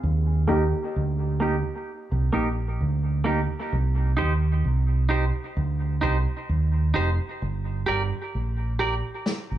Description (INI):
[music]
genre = dub reggae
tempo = 65 BPM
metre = 4/4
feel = straight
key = C minor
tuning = A4 = 436 Hz
[part]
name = deep dub fingered electric bass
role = bass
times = 0.0-9.6 s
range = F1 to Eb2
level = -23 LUFS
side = right 1 dB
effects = none
[part]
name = clean electric guitar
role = accompaniment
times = 0.5-8.9 s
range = Bb3 to D5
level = -28 LUFS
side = right 2 dB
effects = low-pass filter, dub echo
[part]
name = warm upright piano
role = stabs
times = 0.5-0.6 s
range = Bb3 to G4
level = -30 LUFS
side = left 2 dB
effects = low-pass filter, dub echo
[part]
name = snare drum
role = drums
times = 9.3-9.5 s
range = none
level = -27 LUFS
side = left 2 dB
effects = none
[sound]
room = light reverb, small room ambience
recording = none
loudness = -22 LUFS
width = side -12 dB against mid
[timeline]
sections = 0.0-9.6 A section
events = filter sweep 0.0-9.6; break 0.0-9.6; drum fill 9.3-9.6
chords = 0.0 Eb; 3.7 Cm; 7.4 Gm